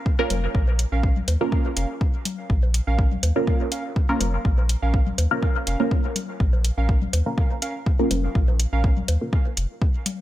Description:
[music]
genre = dub techno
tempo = 123 BPM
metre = 4/4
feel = swing 53% on 16ths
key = Bb minor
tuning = A4 = 440 Hz
[part]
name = electronic kick drum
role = drums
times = 0.1-9.9 s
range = none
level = -21 LUFS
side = equal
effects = small room ambience
[part]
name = filtered dub chord stab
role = stabs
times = 0.2-9.5 s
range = Bb3 to Bb4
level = -26 LUFS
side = right 1 dB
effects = phaser, sidechain pumping, dub echo
[part]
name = warm sub bass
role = bass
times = 0.3-9.7 s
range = F1 to Eb2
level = -22 LUFS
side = equal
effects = sidechain pumping
[part]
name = electronic hi-hat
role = drums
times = 0.3-10.2 s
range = none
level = -27 LUFS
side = equal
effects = small room ambience
[part]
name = bongos and congas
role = percussion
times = 0.3-10.2 s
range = none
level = -34 LUFS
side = left 4 dB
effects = sidechain pumping on perc, small room ambience, dub echo
[part]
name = warbly lo-fi synth keys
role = riff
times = 0.9-8.9 s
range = Db4 to F5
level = -33 LUFS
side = right 4 dB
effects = chorus, sidechain pumping, dub echo
[sound]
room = light reverb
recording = bright 1980s-style digital production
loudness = -20 LUFS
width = side -14 dB against mid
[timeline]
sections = 0.0-10.2 A section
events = none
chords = 0.0 Bbm

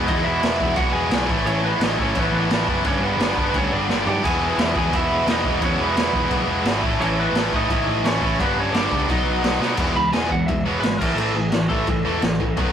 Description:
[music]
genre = punk rock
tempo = 173 BPM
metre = 4/4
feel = straight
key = unclear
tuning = A4 = 440 Hz
[part]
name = lightly driven lead guitar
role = melody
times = 0.0-12.7 s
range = B3 to B5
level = -24 LUFS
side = right 1 dB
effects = none
[part]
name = tight distorted guitar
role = riff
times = 0.0-12.7 s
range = G2 to E4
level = -24 LUFS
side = left 4 dB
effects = distortion
[part]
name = tight distorted guitar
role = riff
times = 0.0-12.7 s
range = E2 to B3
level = -25 LUFS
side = right 4 dB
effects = distortion
[part]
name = overdriven picked electric bass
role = bass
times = 0.0-12.7 s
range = E1 to B2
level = -27 LUFS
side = equal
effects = none
[part]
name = raw garage drum kit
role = drums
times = 0.1-12.7 s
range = crash cymbal, kick drum, snare drum, toms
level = -24 LUFS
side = equal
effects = none
[sound]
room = light reverb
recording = rough rehearsal-room recording, warm saturation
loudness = -18 LUFS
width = side -9 dB against mid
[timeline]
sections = 0.0-9.8 A section; 9.8-12.7 B section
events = drum fill 3.9-4.2, 9.6; lead electric guitar solo 9.8-12.7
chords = 0.0 E; 1.3 A; 2.9 G; 4.2 E; 6.8 A; 8.4 G; 9.1 B; 9.8 E; 11.0 A5

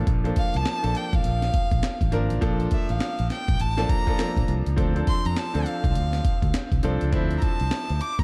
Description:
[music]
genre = R&B, new jack swing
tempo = 102 BPM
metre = 4/4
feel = swing 61% on 16ths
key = unclear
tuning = A4 = 439 Hz
[part]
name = bright concert grand piano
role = accompaniment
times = 0.0-8.2 s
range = F3 to Bb4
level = -32 LUFS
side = equal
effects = none
[part]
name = fingered electric bass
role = bass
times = 0.0-8.2 s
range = G#1 to F2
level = -28 LUFS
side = equal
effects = none
[part]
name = breakbeat sampler-style drum kit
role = drums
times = 0.1-8.2 s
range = handclaps, hi-hat, kick drum, snare drum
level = -27 LUFS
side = equal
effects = none
[part]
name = warm violin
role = melody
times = 0.4-8.2 s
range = E5 to D6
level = -33 LUFS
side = equal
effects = tape echo
[sound]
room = light reverb, digital ambience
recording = dark, warm production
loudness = -24 LUFS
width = mono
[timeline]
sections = 0.0-8.2 A section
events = none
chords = 0.0 Bbmaj7; 4.8 Dm7

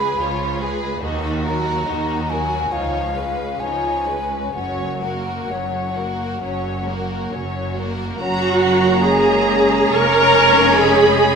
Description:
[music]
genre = classical, slow romantic movement for symphony orchestra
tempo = 63-75 BPM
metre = 4/4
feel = rubato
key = F# major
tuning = A4 = 440 Hz
[part]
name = rich chamber violin section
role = melody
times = 0.0-11.4 s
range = F#4 to C#6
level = -27 LUFS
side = left 3 dB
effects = none
[part]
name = mellow hollow silver concert flute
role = second line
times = 0.0-11.4 s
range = E#5 to B5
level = -24 LUFS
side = left 2 dB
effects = none
[part]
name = rich chamber violin section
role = second line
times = 0.0-11.4 s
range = C#4 to G#4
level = -28 LUFS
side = left 1 dB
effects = none
[part]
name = rich studio viola section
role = accompaniment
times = 0.0-11.4 s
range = D#3 to A#4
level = -19 LUFS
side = right 1 dB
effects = none
[part]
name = clear chamber cello section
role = bass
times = 0.0-11.4 s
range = C#2 to A#3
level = -27 LUFS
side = right 2 dB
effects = none
[part]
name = rich studio double bass section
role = bass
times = 0.0-11.4 s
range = E#1 to D#2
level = -28 LUFS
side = right 3 dB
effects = none
[part]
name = warm oboe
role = second line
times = 8.2-11.4 s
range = G#5 to A#5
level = -24 LUFS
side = right 3 dB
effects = none
[part]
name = warm bassoon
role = accompaniment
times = 8.2-11.4 s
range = C#4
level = -23 LUFS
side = right 3 dB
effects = none
[part]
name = dark French horn section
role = sustained chords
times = 8.2-11.4 s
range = G#3 to C#4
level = -24 LUFS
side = left 4 dB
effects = none
[sound]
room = wet scoring stage reverb, RT60 1.6 s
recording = minimal, uncompressed stereo recording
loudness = -16 LUFS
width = side -6 dB against mid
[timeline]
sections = 0.0-8.2 A section; 8.2-11.4 B section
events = none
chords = 0.0 C#7; 1.0 D#m; 2.7 C#9; 4.5 F#; 9.9 C#/E#

